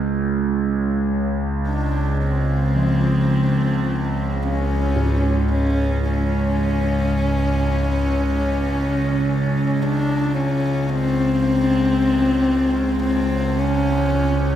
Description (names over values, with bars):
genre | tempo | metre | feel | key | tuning
dark ambient drone | 56 BPM | 4/4 | straight | C# major | A4 = 440 Hz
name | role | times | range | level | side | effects
overtone-sweeping drone | drone | 0.0-14.6 s | C#2 | -19 LUFS | right 1 dB | chorus, built-in reverb, phaser
warm horsehead fiddle | melody | 1.7-14.6 s | B#3 to D4 | -22 LUFS | left 1 dB | shimmer reverb, diffuse ambient delay
gamelan-type bossed gongs | arpeggios | 2.8-11.4 s | G#2 to E#3 | -30 LUFS | equal | none
room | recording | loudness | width
wet lush hall reverb, RT60 2.8 s | dreamy mix soaked in reverb | -18 LUFS | side -10 dB against mid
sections
0.0-14.6 A section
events
fade-in on horsehead fiddle 0.0-14.6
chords
0.0 N.C.; 2.2 C#; 10.9 N.C.